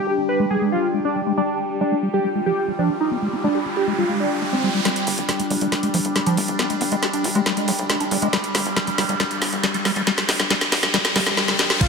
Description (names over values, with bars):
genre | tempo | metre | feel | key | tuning
psychedelic trance | 138 BPM | 4/4 | straight | unclear | A4 = 440 Hz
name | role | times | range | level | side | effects
wide unison lead | melody | 0.0-4.7, 11.8-11.9 s | C4 to B4 | -23 LUFS | right 2 dB | phaser, sidechain pumping, digital delay
evolving wavetable pad | sustained chords | 0.0-11.9 s | G3 to F4 | -27 LUFS | left 1 dB | phaser, built-in reverb, sidechain pumping
granular cloud pad | texture | 0.0-11.4 s | D4 to G5 | -30 LUFS | left 1 dB | built-in reverb, sidechain pumping
liquid acid bass | riff | 0.1-11.8 s | F3 to G4 | -24 LUFS | moving between left 4 dB and right 2 dB | phaser, auto-pan, sidechain pumping, digital delay
riser, swell and impact | sound effects | 2.6-11.9 s | none | -28 LUFS | equal | none
garage drum kit | drums | 4.9-11.9 s | crash cymbal, hi-hat, snare drum | -22 LUFS | equal | overdrive
tight sequencer bass | bass | 5.1-11.3 s | F1 to B1 | -32 LUFS | equal | high-pass filter
electronic kick drum | drums | 11.8-11.9 s | none | -18 LUFS | equal | overdrive
room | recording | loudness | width
wet lush hall reverb, RT60 2.1 s | none | -18 LUFS | side -5 dB against mid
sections
0.0-4.9 A section; 4.9-11.8 B section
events
filter sweep on ambient pad 0.0-4.9; riser 2.6-4.9, 4.9-11.8; build-up 4.9-11.8; drum fill 4.9-11.4, 11.4-11.8; filter sweep on acid bass 4.9-11.8; swell 10.9-11.8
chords
0.0 G5